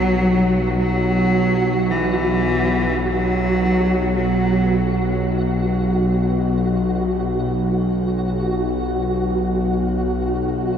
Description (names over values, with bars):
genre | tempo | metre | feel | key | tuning
dark ambient drone | free time | none | none | unclear | A4 = 441 Hz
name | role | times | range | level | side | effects
clear cello | melody | 0.0-5.0 s | E3 to F#3 | -21 LUFS | equal | shimmer reverb, diffuse ambient delay
sweeping resonant pad | sustained chords | 0.0-10.8 s | B2 to F#4 | -28 LUFS | left 1 dB | none
bowed-like drone | drone | 0.0-10.8 s | B1 | -20 LUFS | equal | built-in reverb
flickering grainy texture | texture | 0.0-10.8 s | F#4 | -24 LUFS | right 2 dB | built-in reverb, shimmer reverb
room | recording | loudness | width
wet huge ambient reverb, RT60 7.5 s | none | -17 LUFS | side -8 dB against mid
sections
0.0-10.8 A section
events
none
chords
0.0 B5